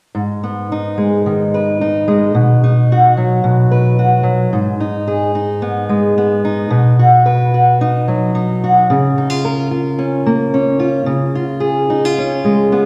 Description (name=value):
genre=folk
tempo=110 BPM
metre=4/4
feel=straight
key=G# dorian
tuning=A4 = 436 Hz
part: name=fingerpicked steel-string acoustic guitar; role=solo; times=0.1-12.9 s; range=G#2 to B4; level=-14 LUFS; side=equal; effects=none
room=wet concert hall reverb, RT60 1.9 s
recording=recorded in a church or concert hall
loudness=-14 LUFS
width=mono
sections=0.2-4.5 A section; 4.5-12.9 B section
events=none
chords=0.2 G#m; 2.3 B; 4.5 G#m; 6.7 B; 8.9 A#m/C#; 11.1 C#